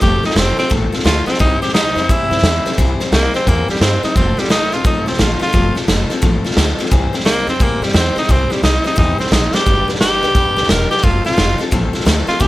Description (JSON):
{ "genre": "rockabilly", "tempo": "174 BPM", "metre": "4/4", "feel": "swing 64% on 8ths", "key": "C mixolydian", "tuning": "A4 = 441 Hz", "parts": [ { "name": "raspy tenor saxophone", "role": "melody", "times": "0.0-12.5 s", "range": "G3 to Bb4", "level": "-18 LUFS", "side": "equal", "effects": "none" }, { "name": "picked steel-string acoustic guitar", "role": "accompaniment", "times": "0.0-12.5 s", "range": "C3 to C5", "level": "-22 LUFS", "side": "left 4 dB", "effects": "none" }, { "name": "upright bass", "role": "bass", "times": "0.0-12.5 s", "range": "E1 to A2", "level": "-18 LUFS", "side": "equal", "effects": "none" }, { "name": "raw garage drum kit", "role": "drums", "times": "0.0-12.5 s", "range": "hi-hat, kick drum, snare drum", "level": "-16 LUFS", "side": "equal", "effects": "none" } ], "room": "small room ambience", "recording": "none", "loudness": "-12 LUFS", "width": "side -17 dB against mid", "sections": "0.0-12.5 A section", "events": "tenor saxophone solo 0.0-12.5; drum fill 9.5", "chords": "0.0 F; 1.4 C; 4.2 F; 6.9 C; 9.7 G; 11.0 F" }